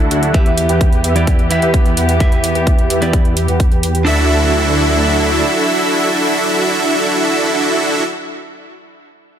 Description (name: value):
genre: EDM, festival progressive house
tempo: 129 BPM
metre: 4/4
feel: straight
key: D major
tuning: A4 = 440 Hz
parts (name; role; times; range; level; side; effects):
- direct-recorded clean electric guitar; accompaniment; 0.0-8.0 s; D3 to E5; -20 LUFS; right 1 dB; spring reverb, sidechain pumping, tape echo
- clear studio string section; sustained chords; 0.0-8.0 s; E3 to G4; -23 LUFS; left 1 dB; sidechain pumping, low-pass filter
- supersaw chords; riff; 0.0-8.0 s; D4 to G5; -16 LUFS; right 1 dB; sidechain pumping, low-pass filter, tape echo
- wide detuned saw bass; bass; 0.0-5.4 s; D2 to E2; -17 LUFS; equal; chorus, sidechain pumping
- electronic hi-hat; drums; 0.1-4.0 s; none; -23 LUFS; right 2 dB; overdrive
- electronic kick drum; drums; 0.3-3.7 s; none; -13 LUFS; equal; none
room: light reverb, digital ambience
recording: none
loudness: -12 LUFS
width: side -9 dB against mid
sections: 0.0-4.1 A section; 4.1-7.8 B section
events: filter sweep on supersaw synth 0.0-4.1; filter sweep on detuned saw bass 0.0-4.1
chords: 0.3 Em; 4.1 Dadd9